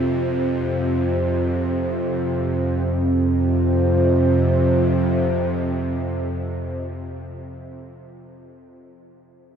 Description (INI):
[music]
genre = dark ambient drone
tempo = free time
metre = none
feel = none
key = unclear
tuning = A4 = 442 Hz
[part]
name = dark analog pad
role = sustained chords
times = 0.0-7.3 s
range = C4 to C5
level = -23 LUFS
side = right 1 dB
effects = chorus
[part]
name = bowed-like drone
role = drone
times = 0.0-7.0 s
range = F2 to C3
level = -22 LUFS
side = equal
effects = built-in reverb
[sound]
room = wet huge ambient reverb, RT60 7.6 s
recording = none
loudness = -18 LUFS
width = side -8 dB against mid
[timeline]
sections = 0.0-2.9 A section; 2.9-7.3 B section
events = none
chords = 0.0 F5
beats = free time